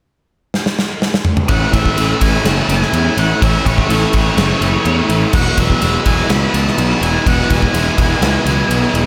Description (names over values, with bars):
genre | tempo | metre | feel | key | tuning
rock, shoegaze and dream pop | 125 BPM | 4/4 | straight | unclear | A4 = 435 Hz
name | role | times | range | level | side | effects
gated 80s drum kit | drums | 0.5-9.1 s | crash cymbal, kick drum, ride cymbal, snare drum, toms | -20 LUFS | equal | none
octave-fuzz lead guitar | melody | 1.5-8.9 s | C#5 to B5 | -23 LUFS | equal | distortion, tape echo
twelve-string electric guitar | arpeggios | 1.5-9.1 s | F#3 to A4 | -28 LUFS | equal | none
biting overdriven guitar | riff | 1.5-9.1 s | E2 to E4 | -24 LUFS | equal | reverse reverb
overdriven electric guitar | riff | 1.5-9.1 s | E2 to E4 | -23 LUFS | equal | analog chorus
tight distorted guitar | riff | 1.5-9.1 s | E2 to A3 | -26 LUFS | equal | none
fuzz picked electric bass | bass | 1.5-9.1 s | E1 to E2 | -19 LUFS | equal | overdrive
room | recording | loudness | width
moderate huge ambient reverb, RT60 8.3 s | dreamy mix soaked in reverb | -14 LUFS | mono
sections
0.0-1.5 A section; 1.5-9.1 B section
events
drum fill 0.5-1.5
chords
0.0 N.C.; 1.5 A; 5.3 Eadd9